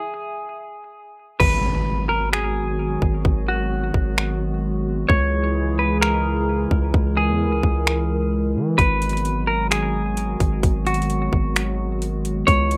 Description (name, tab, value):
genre	hip hop, atmospheric cloud-rap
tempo	130 BPM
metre	4/4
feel	half-time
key	G# minor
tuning	A4 = 440 Hz
part	semi-hollow electric guitar	melody	0.0-12.8 s	F#4 to C#5	-26 LUFS	equal	low-pass filter, delay
part	glassy digital keys	arpeggios	0.0-0.7 s	E5 to G#5	-41 LUFS	equal	chorus, low-pass filter, delay
part	warbly tape-like pad	sustained chords	1.8-12.8 s	C#3 to A#4	-28 LUFS	equal	chorus, built-in reverb, sidechain pumping, low-pass filter
part	long sustained 808-style bass	bass	1.4-12.8 s	G#1 to E3	-26 LUFS	equal	none
part	trap drum kit	drums	1.4-12.8 s	crash cymbal, finger snaps, hi-hat, kick drum	-23 LUFS	equal	none
part	impact	sound effects	1.4-3.2 s	none	-33 LUFS	equal	none
room	little or no reverb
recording	rough home demo mix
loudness	-21 LUFS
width	mono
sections	0.0-1.4 A section; 1.4-12.8 B section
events	stop 0.0-1.4; filter sweep 0.0-1.4; hi-hats muted 1.4-8.8; impact 1.4-3.2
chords	0.0 C#m (rootless); 1.4 G#m7; 5.1 C#m; 8.8 G#m7